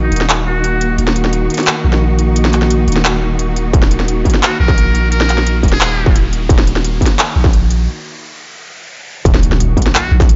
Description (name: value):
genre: half-time drum and bass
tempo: 174 BPM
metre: 4/4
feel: half-time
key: Eb minor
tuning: A4 = 440 Hz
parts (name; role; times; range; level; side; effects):
- trumpet with metal mute; melody; 0.0-0.9, 4.4-6.2, 9.9-10.2 s; Eb4 to Bb4; -24 LUFS; equal; low-pass filter, dub echo
- warm studio cello section; sustained chords; 0.0-10.4 s; Eb3 to Gb4; -22 LUFS; equal; sidechain pumping
- long sustained 808-style bass; bass; 0.0-10.4 s; Eb1 to Bb1; -17 LUFS; equal; none
- riser and impact; sound effects; 0.8-10.4 s; none; -30 LUFS; equal; none
- industrial drum kit; drums; 0.1-10.4 s; handclaps, hi-hat, shaker, snare drum; -19 LUFS; equal; none
- electronic kick drum; drums; 3.7-10.3 s; none; -14 LUFS; equal; distortion
room: light reverb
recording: nothing above 7.6 kHz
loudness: -13 LUFS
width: mono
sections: 0.0-9.3 A section; 9.3-10.4 B section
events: build-up 0.0-9.3; riser 0.8-9.3; break 7.9-9.3; drop 9.3-10.4; impact 9.3-10.4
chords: 0.0 Ebm